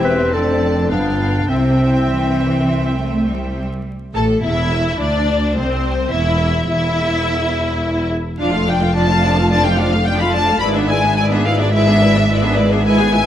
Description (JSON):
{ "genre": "classical", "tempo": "100-108 BPM", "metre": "4/4", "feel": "straight", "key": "C major, A minor from 3.9 s", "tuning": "A4 = 440 Hz", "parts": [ { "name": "rich symphonic violin section", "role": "melody", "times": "0.0-13.3 s", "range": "C5 to B5", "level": "-21 LUFS", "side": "left 2 dB", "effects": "none" }, { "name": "rich symphonic violin section", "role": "second line", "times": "0.0-13.3 s", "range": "C4 to G#5", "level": "-23 LUFS", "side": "left 3 dB", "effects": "none" }, { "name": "warm clarinet", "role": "second line", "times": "0.0-3.3 s", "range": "C4 to B4", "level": "-19 LUFS", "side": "left 1 dB", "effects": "none" }, { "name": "rich symphonic viola section", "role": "accompaniment", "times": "0.0-13.3 s", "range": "F3 to A4", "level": "-22 LUFS", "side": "right 2 dB", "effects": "none" }, { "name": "warm French horn section", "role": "sustained chords", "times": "0.0-3.6 s", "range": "B3 to G4", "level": "-23 LUFS", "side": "left 3 dB", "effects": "none" }, { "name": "rich symphonic cello section", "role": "bass", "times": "0.0-13.3 s", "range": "C2 to A3", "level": "-21 LUFS", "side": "right 1 dB", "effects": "none" }, { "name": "rich symphonic double bass section", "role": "bass", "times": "0.0-13.3 s", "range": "E1 to D2", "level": "-20 LUFS", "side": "right 1 dB", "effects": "none" } ], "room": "moderate concert hall reverb, RT60 2.4 s", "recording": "vinyl crackle", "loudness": "-14 LUFS", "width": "side -10 dB against mid", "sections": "0.0-3.9 A section; 3.9-13.3 B section", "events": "none", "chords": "0.3 Dm7/F; 0.9 G7; 1.5 C; 3.9 Am; 6.1 N.C.; 8.4 Dm/F; 10.6 E7/G#" }